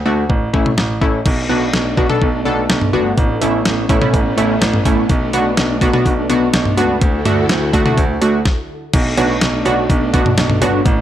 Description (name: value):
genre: synth-pop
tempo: 125 BPM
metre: 4/4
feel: straight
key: B minor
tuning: A4 = 440 Hz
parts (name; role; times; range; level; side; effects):
- funky polysynth comp; accompaniment; 0.1-10.8 s; A3 to A4; -18 LUFS; right 1 dB; chorus
- clear concert grand piano; bass; 0.1-11.0 s; G1 to D2; -19 LUFS; right 1 dB; none
- clean 12-bit digital drum machine; drums; 0.3-11.0 s; cowbell, crash cymbal, hi-hat, kick drum, snare drum, toms; -17 LUFS; equal; none
- string machine, violas; sustained chords; 1.3-11.0 s; D3 to A4; -22 LUFS; left 2 dB; ensemble chorus
room: light reverb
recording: none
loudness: -13 LUFS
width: side -11 dB against mid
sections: 0.0-1.3 A section; 1.3-8.9 B section; 8.9-11.0 C section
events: stop 8.5-8.9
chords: 0.3 A; 1.3 Bm7; 3.2 Aadd9; 5.1 Bm7; 7.0 Dadd9; 8.9 Bm7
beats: 0.30 0.78 | 1.26 1.74 2.22 2.70 | 3.18 3.66 4.14 4.62 | 5.10 5.58 6.06 6.54 | 7.02 7.50 7.98 8.46 | 8.94 9.42 9.90 10.38 | 10.86